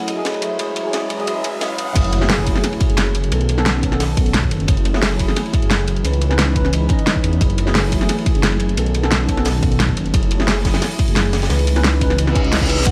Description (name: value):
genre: liquid drum and bass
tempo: 176 BPM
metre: 4/4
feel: straight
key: F# dorian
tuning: A4 = 440 Hz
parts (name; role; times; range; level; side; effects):
- vibraphone with medium hard mallets; melody; 0.0-1.6, 12.9 s; D#5 to F#5; -31 LUFS; equal; tape echo
- bright tine electric piano; accompaniment; 0.0-12.9 s; D#3 to D#5; -25 LUFS; equal; phaser, delay
- glassy FM pad; sustained chords; 0.0-12.9 s; D#3 to D#6; -32 LUFS; equal; none
- crunchy breakbeat drum kit; drums; 0.0-12.9 s; hi-hat, ride cymbal, snare drum; -30 LUFS; equal; high-pass filter on hats, small room ambience, high-pass filter on cymbals, high-pass filter on snare, high-pass filter on room
- riser, impact and reverse cymbal; sound effects; 0.0-3.3, 12.3-12.9 s; none; -29 LUFS; equal; none
- pop drum kit; drums; 0.1-12.9 s; crash cymbal, hi-hat, snare drum; -23 LUFS; equal; small room ambience
- dark detuned saw bass; bass; 2.0-12.9 s; F#1 to E2; -21 LUFS; equal; none
- electronic kick drum; drums; 2.0-12.9 s; none; -22 LUFS; equal; small room ambience
room: light reverb, studio ambience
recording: high-pass filter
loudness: -18 LUFS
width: mono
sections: 0.0-2.0 A section; 2.0-12.9 B section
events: build-up 0.0-2.0; riser 0.0-2.0; filter sweep on tine electric piano 0.0-2.0; filter sweep on ambient pad 0.0-2.0; filter sweep on vibraphone 0.0-2.0; drop 2.0-12.9; impact 2.0-3.3; reverse cymbal 12.3-12.9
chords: 0.0 F#m9; 0.6 C#m9; 2.0 F#m9; 3.3 B9; 4.7 F#m9; 6.0 C#m9; 7.4 F#m9; 8.8 B9; 10.1 F#m9; 11.5 C#m9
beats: 0.25 | 0.59 0.93 1.27 1.61 | 1.96 2.30 2.64 2.98 | 3.32 3.66 4.00 4.34 | 4.68 5.02 5.37 5.71 | 6.05 6.39 6.73 7.07 | 7.41 7.75 8.09 8.43 | 8.77 9.12 9.46 9.80 | 10.14 10.48 10.82 11.16 | 11.50 11.84 12.18 12.52 | 12.87